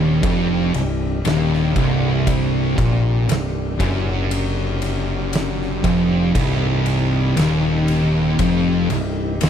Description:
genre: stoner and doom metal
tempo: 59 BPM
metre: 4/4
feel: straight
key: unclear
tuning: A4 = 439 Hz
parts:
  - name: tonewheel organ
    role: sustained chords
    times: 0.0-9.5 s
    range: C3 to G4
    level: -30 LUFS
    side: left 1 dB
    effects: slow rotary speaker
  - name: thick fuzz guitar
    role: riff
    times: 0.0-9.5 s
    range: C2 to Bb2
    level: -23 LUFS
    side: left 8 dB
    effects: distortion
  - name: thick fuzz guitar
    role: riff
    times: 0.0-9.5 s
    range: C2 to Bb2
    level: -22 LUFS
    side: right 6 dB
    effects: distortion
  - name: thick fuzz guitar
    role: riff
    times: 0.0-9.5 s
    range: C2 to Bb2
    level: -24 LUFS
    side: left 1 dB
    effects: distortion
  - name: growling picked electric bass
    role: bass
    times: 0.0-9.5 s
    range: C1 to Bb1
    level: -25 LUFS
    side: equal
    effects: overdrive, tube saturation
  - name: oversized low-tuned drum kit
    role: drums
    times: 0.2-9.5 s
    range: crash cymbal, kick drum, ride cymbal, snare drum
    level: -25 LUFS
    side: equal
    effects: none
room: small room ambience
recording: none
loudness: -16 LUFS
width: side -8 dB against mid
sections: 0.0-9.5 A section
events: none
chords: 0.0 Cm

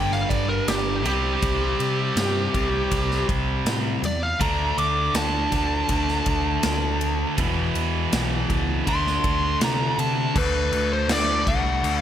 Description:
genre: quiet-loud alternative rock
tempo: 81 BPM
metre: 4/4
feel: straight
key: unclear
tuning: A4 = 440 Hz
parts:
  - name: fuzz lead guitar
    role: melody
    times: 0.0-12.0 s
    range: G4 to D6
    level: -26 LUFS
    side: equal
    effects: distortion
  - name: thick fuzz guitar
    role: riff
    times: 0.0-12.0 s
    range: E2 to D4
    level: -28 LUFS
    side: left 8 dB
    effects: distortion
  - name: tight distorted guitar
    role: riff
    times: 0.0-10.3 s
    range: E2 to D4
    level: -28 LUFS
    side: right 9 dB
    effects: distortion
  - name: overdriven picked electric bass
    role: bass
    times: 0.0-12.0 s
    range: E1 to C3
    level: -27 LUFS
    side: equal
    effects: none
  - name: big rock drum kit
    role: drums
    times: 0.1-12.0 s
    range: crash cymbal, kick drum, ride cymbal, snare drum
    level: -28 LUFS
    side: equal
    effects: none
room: light reverb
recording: none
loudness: -20 LUFS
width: side -10 dB against mid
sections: 0.0-10.4 A section; 10.4-12.0 B section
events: lead electric guitar solo 0.0-10.4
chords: 0.0 G5; 1.0 C5; 4.4 D5; 7.4 E5; 8.9 D5; 10.4 D

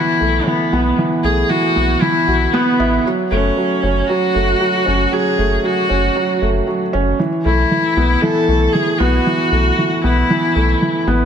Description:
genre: piano and strings electronica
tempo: 116 BPM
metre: 4/4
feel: straight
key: F# minor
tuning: A4 = 440 Hz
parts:
  - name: rich viola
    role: melody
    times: 0.0-11.1 s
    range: B3 to A4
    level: -18 LUFS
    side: left 2 dB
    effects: ping-pong delay
  - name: felt-muted upright piano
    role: riff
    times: 0.0-11.3 s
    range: E3 to F#4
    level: -17 LUFS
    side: right 2 dB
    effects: ping-pong delay
  - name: warm sub bass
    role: bass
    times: 0.2-11.3 s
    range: F#1 to B1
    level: -18 LUFS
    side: left 1 dB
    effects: tube saturation
room: moderate concert hall reverb, RT60 2.3 s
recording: none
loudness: -13 LUFS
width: side -8 dB against mid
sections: 0.0-3.1 A section; 3.1-11.3 B section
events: build-up 0.0-3.1; drop 3.1-11.3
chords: 0.0 B7sus4; 3.1 F#m; 7.2 B7sus4

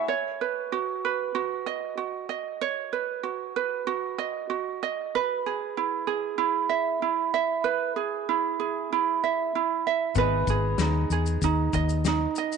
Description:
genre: acoustic pop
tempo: 95 BPM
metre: 4/4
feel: straight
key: B major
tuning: A4 = 440 Hz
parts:
  - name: bright upright piano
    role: accompaniment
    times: 0.0-0.2, 10.2-12.6 s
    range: B3 to C#6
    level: -36 LUFS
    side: left 13 dB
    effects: none
  - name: ukulele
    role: accompaniment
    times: 0.0-12.6 s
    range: D#4 to E5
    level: -26 LUFS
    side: right 8 dB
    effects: none
  - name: vintage muted fingered electric bass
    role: bass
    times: 10.2-12.3 s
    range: G#1 to E2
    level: -25 LUFS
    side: left 2 dB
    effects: none
  - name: loose indie drum kit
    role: drums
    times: 10.2-12.6 s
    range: kick drum, shaker, snare drum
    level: -31 LUFS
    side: left 7 dB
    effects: none
room: wet spring reverb, RT60 2.1 s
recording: 1960s-style stereo with parts hard left and right, nothing above 10.4 kHz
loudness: -25 LUFS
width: side -5 dB against mid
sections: 0.1-12.6 A section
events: none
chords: 0.1 Badd9; 5.1 E; 10.2 G#m

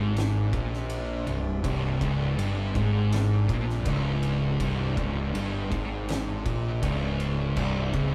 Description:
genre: stoner and doom metal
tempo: 81 BPM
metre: 4/4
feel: straight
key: unclear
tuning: A4 = 439 Hz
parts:
  - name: overtone-sweeping drone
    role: sustained chords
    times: 0.0-8.1 s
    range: C3 to D4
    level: -42 LUFS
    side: equal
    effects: chorus, built-in reverb, phaser
  - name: thick fuzz guitar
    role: riff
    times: 0.0-8.1 s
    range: C2 to Bb2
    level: -34 LUFS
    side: equal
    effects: none
  - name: thick fuzz guitar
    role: riff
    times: 0.0-8.1 s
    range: C2 to Bb2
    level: -30 LUFS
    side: equal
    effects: distortion
  - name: fuzz picked electric bass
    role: bass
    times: 0.0-8.1 s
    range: C1 to Bb1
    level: -34 LUFS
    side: equal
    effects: overdrive
  - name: oversized low-tuned drum kit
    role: drums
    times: 0.2-8.1 s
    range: crash cymbal, kick drum, ride cymbal, snare drum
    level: -37 LUFS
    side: equal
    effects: none
room: moderate stone room reverb, RT60 1.3 s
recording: band playing live in one room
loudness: -27 LUFS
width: mono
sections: 0.0-8.1 A section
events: none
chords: 0.0 C5

